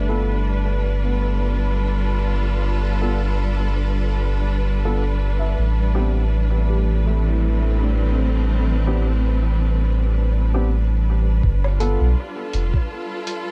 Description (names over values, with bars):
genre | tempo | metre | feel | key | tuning
ambient dub | 82 BPM | 4/4 | swing 56% on 16ths | unclear | A4 = 436 Hz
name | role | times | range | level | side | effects
clear symphonic string section | sustained chords | 0.0-13.5 s | A2 to B4 | -29 LUFS | equal | none
felt-muted upright piano | arpeggios | 0.0-11.5 s | A3 to E5 | -35 LUFS | equal | dub echo
soft dub sub bass | bass | 0.0-12.7 s | F1 to B1 | -21 LUFS | equal | none
bubbling stepped-filter texture | texture | 0.0-11.4 s | B4 | -40 LUFS | equal | none
dark upright piano | stabs | 0.1-12.1 s | B3 to A4 | -32 LUFS | equal | dub echo
electronic kick drum | drums | 11.4-12.9 s | none | -23 LUFS | equal | none
electronic woodblock and hi-hat | drums | 11.6-13.4 s | none | -35 LUFS | equal | low-pass filter on perc, low-pass filter on hats, dub echo
room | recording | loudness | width
studio ambience | echo-heavy mix | -20 LUFS | mono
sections
0.0-11.4 A section; 11.4-13.5 B section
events
filter sweep on string section 0.0-11.4; filter sweep on upright piano 0.0-11.4; filter sweep on felt piano 0.0-11.4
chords
0.0 G9; 5.6 Am11; 11.4 G9